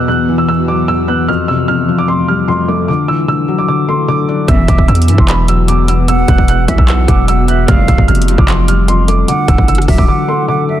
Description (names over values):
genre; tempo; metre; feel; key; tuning
hip hop, trap; 150 BPM; 4/4; half-time; E minor; A4 = 440 Hz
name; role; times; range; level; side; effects
dark concert grand piano; melody; 0.0-10.8 s; B5 to F#6; -17 LUFS; right 3 dB; digital delay
felt-muted upright piano; accompaniment; 0.0-10.8 s; E2 to D4; -15 LUFS; left 4 dB; none
ethereal airy pad; sustained chords; 0.0-10.8 s; E3 to F#4; -20 LUFS; right 1 dB; ensemble chorus, built-in reverb
hollow silver concert flute; second line; 4.5-10.8 s; E5 to F#5; -22 LUFS; right 6 dB; digital delay
dark symphonic string section; stabs; 4.5-4.8, 7.7-8.0 s; B1 to G3; -22 LUFS; left 1 dB; none
distorted 808-style bass; bass; 4.5-10.1 s; D1 to G2; -12 LUFS; equal; distortion
trap drum kit; drums; 4.5-10.1 s; handclaps, hi-hat, kick drum, rim click; -12 LUFS; equal; none
room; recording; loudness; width
small room ambience; dense, heavily limited modern master; -9 LUFS; side -12 dB against mid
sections
0.0-10.8 A section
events
break 10.1-10.8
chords
0.0 Esus2; 1.3 Fadd9; 2.9 Dadd9; 4.5 Esus2; 7.7 Fadd9; 9.3 Dadd9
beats
0.08 0.48 0.88 | 1.28 1.68 2.08 2.48 | 2.88 3.28 3.68 4.08 | 4.48 4.88 5.28 5.68 | 6.08 6.48 6.88 7.28 | 7.68 8.08 8.48 8.88 | 9.28 9.68 10.08 10.48